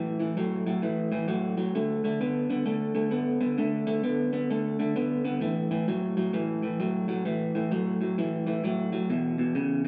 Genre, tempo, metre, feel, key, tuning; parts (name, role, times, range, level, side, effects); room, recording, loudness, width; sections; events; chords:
blues; 131 BPM; 4/4; swing 64% on 8ths; A4 = 440 Hz
electric guitar through a small old amp; solo; 0.0-9.9 s; E2 to B3; -28 LUFS; equal; spring reverb
moderate large studio reverb, RT60 0.9 s; band playing live in one room; -28 LUFS; mono
0.0-9.9 A section
0.0 A5; 1.7 D5; 5.4 A5; 9.1 E5